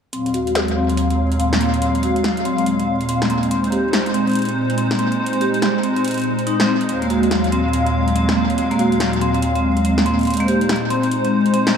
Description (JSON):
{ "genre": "IDM", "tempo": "142 BPM", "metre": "4/4", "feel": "swing 62% on 16ths", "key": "unclear", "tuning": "A4 = 440 Hz", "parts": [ { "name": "hollow soft pad", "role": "sustained chords", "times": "0.1-11.8 s", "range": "Eb2 to F5", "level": "-19 LUFS", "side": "equal", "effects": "ensemble chorus" }, { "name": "vibraphone with medium mallets", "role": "arpeggios", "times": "0.1-11.8 s", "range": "Bb3 to G4", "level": "-20 LUFS", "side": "left 1 dB", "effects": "low-pass filter, tape echo" }, { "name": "electro analog drum machine", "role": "drums", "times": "0.1-11.7 s", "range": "hi-hat, snare drum", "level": "-24 LUFS", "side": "equal", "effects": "studio reverb, tape echo" } ], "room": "wet spring reverb, RT60 2.1 s", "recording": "echo-heavy mix, small room ambience", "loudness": "-16 LUFS", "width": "side -7 dB against mid", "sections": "0.1-11.8 A section", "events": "filter sweep on vibraphone 0.1-11.8", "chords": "0.1 Ebmadd9; 3.5 Bb9sus4; 6.9 Ebmadd9; 10.3 Bb9sus4" }